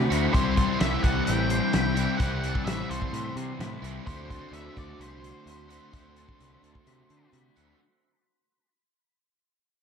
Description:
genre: rock, shoegaze and dream pop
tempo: 129 BPM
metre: 4/4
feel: straight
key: D mixolydian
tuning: A4 = 440 Hz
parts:
  - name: twangy electric guitar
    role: arpeggios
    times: 0.0-7.8 s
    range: G4 to C5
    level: -39 LUFS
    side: left 7 dB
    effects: ensemble chorus, analog delay
  - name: biting overdriven guitar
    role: riff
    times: 0.0-7.8 s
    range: C3 to F#4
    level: -33 LUFS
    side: right 8 dB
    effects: reverse reverb
  - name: thick fuzz guitar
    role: riff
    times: 0.0-7.8 s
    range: C3 to D4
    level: -31 LUFS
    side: left 11 dB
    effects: distortion, wide subtle chorus
  - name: growling picked electric bass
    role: bass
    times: 0.0-7.7 s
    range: A1 to D3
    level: -31 LUFS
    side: equal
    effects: overdrive
  - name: loose indie drum kit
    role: drums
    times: 0.1-7.7 s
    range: hi-hat, kick drum, snare drum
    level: -29 LUFS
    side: equal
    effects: none
  - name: octave-fuzz lead guitar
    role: melody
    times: 0.3-7.3 s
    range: C5 to G5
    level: -34 LUFS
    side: equal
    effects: distortion, analog delay
room: light reverb, small room reverb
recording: none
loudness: -24 LUFS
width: side -7 dB against mid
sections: 0.0-7.8 A section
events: fade-out 0.0-7.8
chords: 0.3 Cmaj7; 4.1 D7sus4

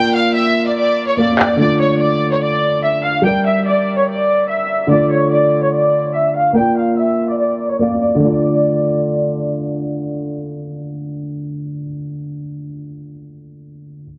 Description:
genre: hip hop, drill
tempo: 145 BPM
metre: 4/4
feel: half-time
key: D minor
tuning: A4 = 440 Hz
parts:
  - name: warm studio violin section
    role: melody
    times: 0.0-9.4 s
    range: C#5 to G5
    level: -18 LUFS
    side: equal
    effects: none
  - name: dark concert grand piano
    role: accompaniment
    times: 0.0-14.0 s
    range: D3 to F5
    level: -20 LUFS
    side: equal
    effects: none
  - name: electronic handclaps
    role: drums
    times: 1.4-1.5 s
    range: none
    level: -19 LUFS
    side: equal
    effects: none
room: light reverb, small room reverb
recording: heavily compressed radio sound, multiband compression, low-pass filter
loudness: -16 LUFS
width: mono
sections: 0.0-8.2 A section; 8.2-11.5 B section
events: break 0.0-1.6; filter sweep 0.0-8.2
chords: 0.0 Bb; 1.6 Dm; 3.3 Gm; 4.9 Dm; 6.6 Bb; 8.2 Dm

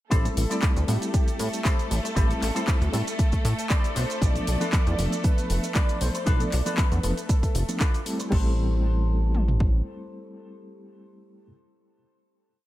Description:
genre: nu-disco, nu disco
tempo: 117 BPM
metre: 4/4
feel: swing 54% on 16ths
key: A minor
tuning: A4 = 444 Hz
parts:
  - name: wide unison lead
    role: melody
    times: 0.1-7.8 s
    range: G4 to D5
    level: -35 LUFS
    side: equal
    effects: tape echo
  - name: rich symphonic violin section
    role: sustained chords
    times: 0.1-8.3 s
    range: A3 to A4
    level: -35 LUFS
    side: equal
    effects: sidechain pumping
  - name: electric guitar with an envelope filter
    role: riff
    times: 0.1-11.5 s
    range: D4 to D5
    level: -36 LUFS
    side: left 2 dB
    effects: lush chorus, diffuse ambient delay
  - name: chorused synth bass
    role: bass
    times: 0.1-9.8 s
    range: F1 to A2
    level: -24 LUFS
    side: equal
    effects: none
  - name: house drum kit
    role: drums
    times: 0.1-9.7 s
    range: kick drum, toms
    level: -23 LUFS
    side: equal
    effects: overdrive, studio reverb
  - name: house drum kit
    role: drums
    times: 0.1-8.4 s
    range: crash cymbal, handclaps, hi-hat, shaker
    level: -34 LUFS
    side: left 2 dB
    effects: overdrive, studio reverb
  - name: maracas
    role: percussion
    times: 0.1-8.3 s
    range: none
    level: -40 LUFS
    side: right 7 dB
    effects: none
  - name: reed electric piano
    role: accompaniment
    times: 0.2-11.5 s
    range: F3 to A4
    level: -32 LUFS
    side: equal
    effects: fast tremolo, sidechain pumping, diffuse ambient delay
room: light reverb, digital ambience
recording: none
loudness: -22 LUFS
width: side -15 dB against mid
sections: 0.1-8.3 drop; 8.3-12.4 final chord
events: drop 0.1-8.3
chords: 0.1 Am7; 4.0 Bm7b5; 8.3 Am7

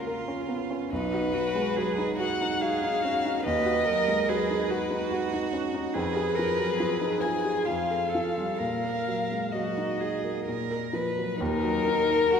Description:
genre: classical, slow romantic movement for piano trio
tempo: 63-72 BPM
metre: 3/4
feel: rubato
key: Eb minor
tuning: A4 = 439 Hz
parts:
  - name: dark violin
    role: melody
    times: 0.0-12.4 s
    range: Bb4 to Ab5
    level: -28 LUFS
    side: left 3 dB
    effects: none
  - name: warm cello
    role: second line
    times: 0.0-12.4 s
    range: D#4 to B4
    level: -31 LUFS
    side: right 5 dB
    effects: none
  - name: warm grand piano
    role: accompaniment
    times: 0.0-12.4 s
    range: B1 to Bb4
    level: -30 LUFS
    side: equal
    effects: none
room: wet church reverb, RT60 2.9 s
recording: recorded in a church or concert hall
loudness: -25 LUFS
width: side -7 dB against mid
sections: 0.0-11.4 A section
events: none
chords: 0.0 Bbm/Db; 0.9 B; 3.4 B/D#; 5.9 Fm7b5; 7.7 F; 8.6 Ebm/Bb; 10.5 Bb5; 11.4 Ebm

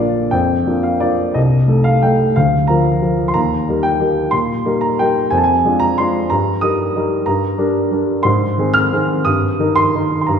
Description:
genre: classical, piano waltz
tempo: 166-198 BPM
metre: 3/4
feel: rubato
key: Eb major from 7.3 s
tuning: A4 = 438 Hz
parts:
  - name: dark baby grand piano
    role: solo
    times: 0.0-10.4 s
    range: Bb1 to F6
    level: -13 LUFS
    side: equal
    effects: none
room: wet recital hall reverb, RT60 1.8 s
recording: heard from further back in the room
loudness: -13 LUFS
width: side -7 dB against mid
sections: 0.0-10.4 A section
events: none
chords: 0.0 Bb; 1.4 Adim/C; 2.4 Bb/D; 3.4 Eb; 5.3 Ddim/F; 6.3 Eb/G; 7.3 Gm; 8.3 Ab; 9.3 Eb/G

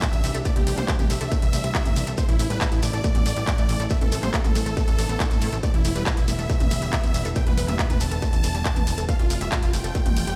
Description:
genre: uplifting trance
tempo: 139 BPM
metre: 4/4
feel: straight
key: A minor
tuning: A4 = 439 Hz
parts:
  - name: big supersaw lead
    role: melody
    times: 0.0-10.4 s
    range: E4 to A5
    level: -34 LUFS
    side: equal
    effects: sidechain pumping, tape echo
  - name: lush unison pad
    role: sustained chords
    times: 0.0-10.4 s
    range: C3 to F4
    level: -38 LUFS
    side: equal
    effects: none
  - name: unison pluck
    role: arpeggios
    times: 0.0-10.3 s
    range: A2 to A4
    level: -36 LUFS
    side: equal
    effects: sidechain pumping, tape echo
  - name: electronic kick drum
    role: drums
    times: 0.0-10.0 s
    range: none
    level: -25 LUFS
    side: equal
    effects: distortion
  - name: techno drum kit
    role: drums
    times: 0.0-10.4 s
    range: handclaps, hi-hat, ride cymbal, toms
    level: -33 LUFS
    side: equal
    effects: sidechain pumping on hats, sidechain pumping on toms, sidechain pumping on cymbals
  - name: shekere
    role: percussion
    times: 0.0-10.4 s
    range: none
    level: -39 LUFS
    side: equal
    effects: none
  - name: plucky analog bass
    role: bass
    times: 0.1-10.4 s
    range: E1 to A2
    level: -30 LUFS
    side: equal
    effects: sidechain pumping
room: light reverb, digital ambience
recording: played on a big sound system in a bare room, stone room reverb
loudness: -23 LUFS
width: mono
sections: 0.0-10.4 A section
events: none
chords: 0.0 Cadd9; 2.2 Am; 5.6 Em7; 9.1 F

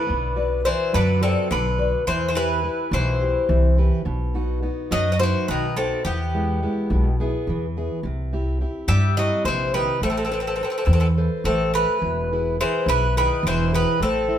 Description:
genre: greek folk, Greek bouzouki band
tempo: 211 BPM (eighths)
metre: 7/8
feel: straight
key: unclear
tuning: A4 = 439 Hz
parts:
  - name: Greek bouzouki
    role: melody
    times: 0.0-14.4 s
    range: G4 to E5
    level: -24 LUFS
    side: equal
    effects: none
  - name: Greek bouzouki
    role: second line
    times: 0.0-14.4 s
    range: C3 to B3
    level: -28 LUFS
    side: left 2 dB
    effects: none
  - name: fingerpicked plugged-in steel-string acoustic guitar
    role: accompaniment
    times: 0.0-14.4 s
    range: B2 to D5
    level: -26 LUFS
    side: right 1 dB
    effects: none
  - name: upright bass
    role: bass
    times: 0.1-14.4 s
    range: E1 to G2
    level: -22 LUFS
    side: equal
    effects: none
room: moderate studio reverb, RT60 0.7 s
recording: band playing live in one room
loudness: -19 LUFS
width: side -10 dB against mid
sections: 0.1-14.4 A section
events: none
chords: 0.1 Bm; 2.1 Em; 4.1 B; 6.0 E; 8.0 C; 10.0 Amadd9; 12.0 E

